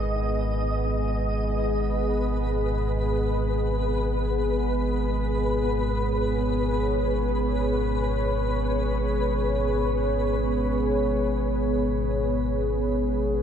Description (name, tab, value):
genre	dark ambient drone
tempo	free time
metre	none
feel	none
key	G# minor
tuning	A4 = 440 Hz
part	deep dark ambient pad	sustained chords	0.0-13.4 s	B3 to D#5	-26 LUFS	equal	chorus, built-in reverb
part	deep rumbling drone	drone	0.0-13.4 s	G#1	-27 LUFS	equal	built-in reverb, lush chorus
part	flickering grainy texture	texture	0.0-13.4 s	B4 to D#5	-32 LUFS	left 1 dB	built-in reverb
room	wet cathedral reverb, RT60 6.8 s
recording	in a vast, echoing space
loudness	-23 LUFS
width	side -8 dB against mid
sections	0.0-13.4 A section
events	fade-in on ambient pad 0.0-13.4; fade-out on synth texture 0.0-13.4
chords	0.0 G#m